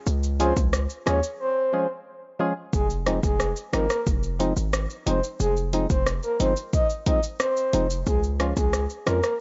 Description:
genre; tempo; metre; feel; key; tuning
dancehall; 90 BPM; 4/4; straight; F minor; A4 = 441 Hz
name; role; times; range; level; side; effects
hard-hitting 808-style bass; bass; 0.1-9.2 s; F1 to F2; -28 LUFS; equal; none
afro-pop drum kit; drums; 0.1-9.4 s; hi-hat, kick drum, rim click, shaker; -28 LUFS; equal; none
breathy flute-like synth lead; melody; 0.4-9.3 s; Ab4 to Eb5; -29 LUFS; equal; chorus, tape echo
percussive organ stab; accompaniment; 0.4-9.2 s; F3 to Ab4; -29 LUFS; equal; chorus
room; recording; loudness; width
little or no reverb; nothing above 7.6 kHz; -24 LUFS; mono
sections
0.0-2.7 A section; 2.7-9.4 B section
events
break 1.4-2.7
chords
0.0 Db; 2.7 Fm7; 8.1 Db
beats
| 0.07 0.73 1.40 2.07 | 2.73 3.40 4.07 4.73 | 5.40 6.07 6.73 7.40 | 8.07 8.73

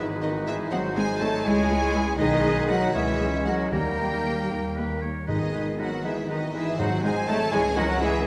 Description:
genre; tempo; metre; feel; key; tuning
classical; 76-83 BPM (dotted quarters); 6/8; rubato; G# minor; A4 = 438 Hz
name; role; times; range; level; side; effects
warm symphonic violin section; melody; 0.0-8.3 s; D#5 to A5; -35 LUFS; equal; none
bright clarinet; second line; 0.0-8.1 s; C#4 to E4; -37 LUFS; equal; none
clear oboe; second line; 0.0-8.1 s; A#4 to C#5; -39 LUFS; equal; none
silver concert flute; second line; 0.0-8.3 s; F#4 to C#5; -36 LUFS; equal; none
warm symphonic violin section; second line; 0.0-8.1 s; D#4 to A4; -36 LUFS; equal; none
clear bassoon; accompaniment; 0.0-8.1 s; G#3 to A#3; -35 LUFS; equal; none
dark studio viola section; accompaniment; 0.0-8.2 s; D#3 to E4; -36 LUFS; equal; none
mellow French horn section; sustained chords; 0.0-8.3 s; D#3 to A3; -33 LUFS; equal; none
clear studio double bass section; bass; 0.0-8.3 s; G#1 to D#2; -34 LUFS; equal; none
warm studio cello section; bass; 0.0-8.3 s; D#3 to A3; -34 LUFS; equal; none
timpani; percussion; 3.7-7.5 s; G#2 to D#3; -37 LUFS; equal; none
room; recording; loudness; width
wet concert hall reverb, RT60 2.1 s; none; -25 LUFS; mono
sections
0.0-8.3 A section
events
none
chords
0.0 G#m; 0.7 G#7; 1.4 C#m; 2.2 G#m/B; 2.9 C#m; 3.7 D#; 5.3 G#m; 6.8 G#7; 7.5 C#m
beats
| 0.71 1.45 | 2.18 2.94 | 3.73 4.51 | 5.29 6.05 | 6.79 7.52 | 8.27

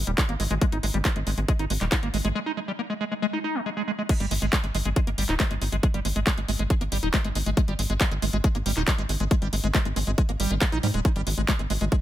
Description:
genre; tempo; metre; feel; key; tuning
psychedelic trance; 138 BPM; 4/4; straight; unclear; A4 = 443 Hz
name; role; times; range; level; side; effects
tight sequencer bass; bass; 0.0-11.9 s; D#1 to G#2; -26 LUFS; equal; tube saturation
liquid acid bass; riff; 0.1-12.0 s; G3 to D#4; -29 LUFS; moving between left 4 dB and right 4 dB; chorus, auto-pan, vintage 12-bit sampler grit, sidechain pumping, tape echo
drum and bass drum kit; drums; 0.1-12.0 s; crash cymbal, handclaps, hi-hat; -30 LUFS; equal; overdrive
electronic kick drum; drums; 0.2-12.0 s; none; -22 LUFS; equal; overdrive
room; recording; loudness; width
little or no reverb; none; -23 LUFS; side -13 dB against mid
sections
0.0-4.1 A section; 4.1-12.0 B section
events
break 2.4-4.1; drop 4.1-12.0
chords
0.0 G#5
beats
0.18 | 0.61 1.05 1.48 1.92 | 2.35 2.79 3.22 3.66 | 4.09 4.53 4.96 5.40 | 5.83 6.27 6.70 7.14 | 7.57 8.01 8.44 8.88 | 9.31 9.74 10.18 10.62 | 11.05 11.48 11.92

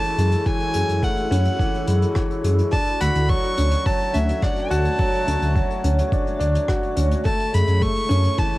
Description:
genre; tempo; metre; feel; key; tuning
piano and strings electronica; 106 BPM; 4/4; straight; F# minor; A4 = 440 Hz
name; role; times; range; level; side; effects
warm violin; melody; 0.0-8.6 s; E5 to C#6; -26 LUFS; equal; none
granular cloud pad; sustained chords; 0.0-8.6 s; D3 to A5; -33 LUFS; right 1 dB; built-in reverb, sidechain pumping, cassette tape
clear upright piano; riff; 0.0-8.6 s; E3 to F#4; -24 LUFS; left 1 dB; cassette tape
jazz brush drum kit; drums; 0.0-8.6 s; hi-hat, rim click; -38 LUFS; left 1 dB; none
dark detuned saw bass; bass; 0.2-8.3 s; D2 to F#2; -19 LUFS; equal; tube saturation, sidechain pumping
electronic kick drum; drums; 0.5-8.5 s; none; -23 LUFS; equal; none
room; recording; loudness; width
light reverb; home recording on cassette; -18 LUFS; side -17 dB against mid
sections
0.0-8.6 A section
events
none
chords
0.0 F#m9; 2.7 Dmaj7; 7.3 F#m9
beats
| 0.46 1.03 1.59 2.16 | 2.73 3.29 3.86 4.42 | 4.99 5.56 6.12 6.69 | 7.25 7.82 8.39

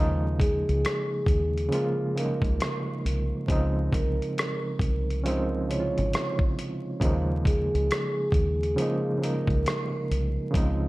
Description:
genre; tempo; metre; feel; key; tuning
lo-fi hip hop; 68 BPM; 4/4; swing 64% on 16ths; unclear; A4 = 440 Hz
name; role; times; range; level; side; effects
overdriven reed electric piano; accompaniment; 0.0-10.9 s; C3 to F4; -29 LUFS; right 1 dB; fast tremolo, cassette tape
deep dub fingered electric bass; bass; 0.0-10.9 s; Ab1 to Eb2; -28 LUFS; equal; none
vibraphone with soft mallets; melody; 0.4-10.5 s; Ab4 to Db5; -31 LUFS; right 1 dB; analog delay
dusty soul sampler-style drum kit; drums; 0.4-10.8 s; hi-hat, kick drum, rim click; -28 LUFS; equal; none
room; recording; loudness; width
little or no reverb; vinyl crackle; -24 LUFS; side -19 dB against mid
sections
0.0-10.9 A section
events
none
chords
0.0 Eb7sus4; 3.5 Bbm11; 7.0 Eb7sus4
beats
0.83 1.72 2.60 | 3.48 4.36 5.25 6.13 | 7.01 7.89 8.78 9.66 | 10.54

